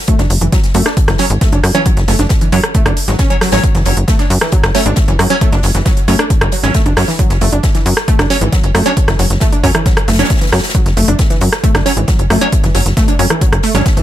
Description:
driving peak-time techno; 135 BPM; 4/4; straight; F# minor; A4 = 440 Hz
wide unison pluck; riff; 0.1-14.0 s; E3 to D4; -18 LUFS; equal; tube saturation, sidechain pumping, digital delay
electronic kick drum; drums; 0.1-13.9 s; -13 LUFS; equal
swinging big-band drum kit; drums; 0.1-14.0 s; hi-hat, snare drum; -26 LUFS; left 3 dB; sidechain pumping on hats, high-pass filter on hats, high-pass filter on snare, high-pass filter on room
techno drum kit; drums; 0.1-14.0 s; hi-hat, rim click; -18 LUFS; right 1 dB
tight sequencer bass; bass; 0.2-14.0 s; F#1 to F#2; -14 LUFS; equal; tube saturation, sidechain pumping
wavetable chord stab; stabs; 1.2-13.8 s; F#3 to C#5; -18 LUFS; right 3 dB; phaser, sidechain pumping, digital delay
digital ambience; -10 LUFS; side -12 dB against mid
0.0-14.0 A section
0.0 F#5

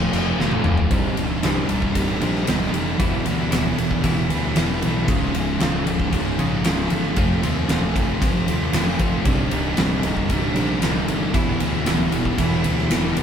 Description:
quiet-loud alternative rock; 115 BPM; 4/4; straight; A4 = 440 Hz
thick fuzz guitar; riff; 0.0-13.2 s; C2 to F4; -22 LUFS; equal; distortion
fuzz fingered electric bass; bass; 0.0-13.2 s; C1 to Eb2; -27 LUFS; equal; overdrive
huge arena drum kit; drums; 0.1-13.2 s; crash cymbal, kick drum, ride cymbal, snare drum, toms; -23 LUFS; equal
twelve-string electric guitar; arpeggios; 0.9-13.2 s; C2 to F3; -26 LUFS; right 2 dB
moderate stone room reverb, RT60 1.1 s; band playing live in one room; -18 LUFS; side -8 dB against mid
0.9-13.2 A section
drum fill 0.4-0.9
0.0 F; 0.9 Cm; 3.0 Em; 5.1 Db; 7.2 F; 9.3 Cm; 11.3 Em

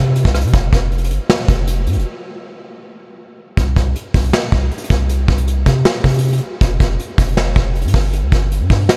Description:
hip hop, trap; 158 BPM; 4/4; half-time; A4 = 440 Hz
long sustained 808-style bass; bass; 0.0-8.9 s; F1 to C3; -18 LUFS; equal
vintage brush drum kit; drums; 0.2-9.0 s; hi-hat, kick drum, rim click, snare drum; -19 LUFS; equal
light reverb; -16 LUFS; mono
0.0-3.6 A section; 3.6-9.0 B section
break 2.1-3.6

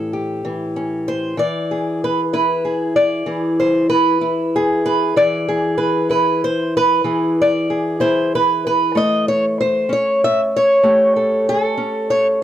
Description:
acoustic country blues, solo or duo; 63 BPM (dotted quarters); 12/8; straight; A4 = 440 Hz
fingerpicked old ladder-braced acoustic guitar; solo; 0.0-12.4 s; A2 to E5; -15 LUFS; equal
studio ambience; dry, close 1970s-style studio recording; -15 LUFS; side -11 dB against mid
0.0-12.4 A section
0.0 A7; 1.4 E7; 8.9 A7

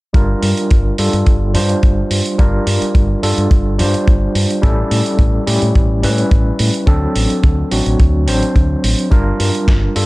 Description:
nu-disco, nu disco; 107 BPM; 4/4; straight; G minor; A4 = 440 Hz
overdriven tine electric piano; accompaniment; 0.1-10.1 s; F#3 to C5; -18 LUFS; equal; medium tremolo, sidechain pumping, low-pass filter, analog delay
fingered electric bass with an envelope filter; bass; 0.1-10.1 s; G1 to A2; -16 LUFS; equal
dusty soul sampler-style drum kit; drums; 0.1-10.1 s; hi-hat, snare drum; -23 LUFS; right 3 dB; studio reverb
kick drum; drums; 0.1-9.8 s; -12 LUFS; equal; studio reverb
studio reverb; -12 LUFS; side -21 dB against mid
0.1-10.1 A section
filter sweep on tine electric piano 0.1-10.1
0.1 Gm7; 4.6 A7; 6.9 D7; 9.1 Gm7

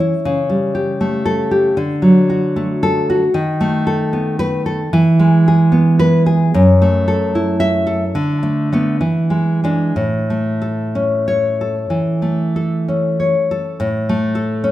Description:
romantic piece for solo classical guitar; 60-81 BPM; 4/4; rubato; A major; A4 = 440 Hz
nylon-string guitar; solo; 0.0-14.7 s; F#2 to E5; -13 LUFS; equal
moderate recital hall reverb, RT60 1.7 s; minimal, uncompressed stereo recording; -13 LUFS; side -14 dB against mid
0.0-13.8 A section
0.3 A7/C#; 1.8 D; 3.3 B7/D#; 4.9 E; 6.5 F#m7; 8.2 Bm7/D; 9.0 E7; 10.0 A; 13.8 N.C.

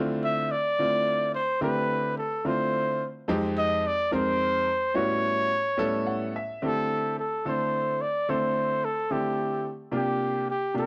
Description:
jazz; 72 BPM (dotted quarters); 6/8; straight; D dorian, D minor from 6.6 s; A4 = 439 Hz
clear grand piano; accompaniment; 0.0-10.9 s; F2 to F#5; -32 LUFS; equal
clear trumpet; melody; 0.2-10.9 s; G4 to E5; -28 LUFS; equal; slapback echo
studio reverb; dry, close 1970s-style studio recording; -27 LUFS; mono
0.0-6.6 A section; 6.6-10.9 B section
grand piano fill 5.8-6.6
0.0 Dm9; 3.3 Fm9; 5.0 A13; 6.6 D9sus4; 9.9 C9sus4

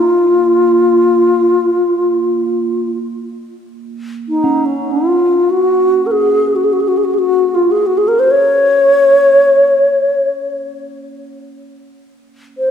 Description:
world meditative, free-time meditation music; free time; Bb minor; A4 = 441 Hz
wooden-headed alto flute; melody; 0.0-12.7 s; Db4 to Db5; -10 LUFS; left 1 dB; analog delay
bronze singing bowl; texture; 0.0-12.5 s; Bb3 to Db4; -24 LUFS; right 4 dB
wet echo chamber reverb, RT60 2.2 s; -10 LUFS; side -8 dB against mid
0.0-12.7 A section

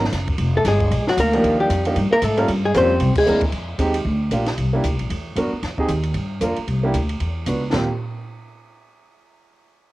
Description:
jazz, small-group swing and bop; 229 BPM; 4/4; swing 59% on 8ths; Eb major; A4 = 438 Hz
upright bass; bass; 0.0-7.9 s; F1 to Ab2; -22 LUFS; equal; tube saturation
compact cocktail drum kit; drums; 0.0-7.8 s; crash cymbal, hi-hat, kick drum, ride cymbal, snare drum, splash cymbal, toms; -28 LUFS; equal
archtop guitar, miked and amplified; melody; 0.6-3.4 s; Gb4 to C5; -19 LUFS; left 2 dB; cassette tape
growling trombone; second line; 0.6-3.4 s; Gb3 to C4; -25 LUFS; right 1 dB; cassette tape
clear baby grand piano; accompaniment; 1.3-7.9 s; F3 to B4; -23 LUFS; right 2 dB; cassette tape
light reverb, small room ambience; home recording on cassette; -18 LUFS; side -17 dB against mid
0.0-3.5 A section; 3.5-7.7 B section; 7.7-8.8 C section
band accent 3.1
0.4 Fmadd9; 0.9 Bb; 1.4 Ebmaj9; 2.5 Gm7b5; 3.0 C7; 3.5 Fm9; 4.1 Gm7; 4.6 C9; 5.1 Esus2; 5.6 Fm9; 6.2 Gm7; 6.7 C9; 7.2 Esus2; 7.7 Eb69

